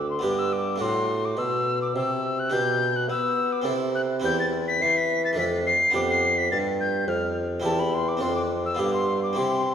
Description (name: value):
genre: classical, baroque-style sonata movement with continuo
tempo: 105 BPM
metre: 3/4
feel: straight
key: G major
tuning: A4 = 439 Hz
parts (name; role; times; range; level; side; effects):
- mellow soprano recorder; melody; 0.0-9.7 s; A5 to C7; -25 LUFS; left 2 dB; none
- harpsichord; accompaniment; 0.0-9.7 s; D2 to A4; -29 LUFS; right 1 dB; none
- warm bassoon; bass; 0.0-9.7 s; D2 to B3; -26 LUFS; right 1 dB; none
room: wet scoring stage reverb, RT60 2.0 s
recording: recorded in a church or concert hall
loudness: -22 LUFS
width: side -8 dB against mid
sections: 0.0-9.7 A section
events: none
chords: 0.2 G; 0.8 D7/A; 2.5 G/B; 3.7 Am/C; 4.2 C/E; 5.4 Dm/F; 5.9 G7/F; 7.6 C/E; 8.2 Dm7/F; 8.8 G7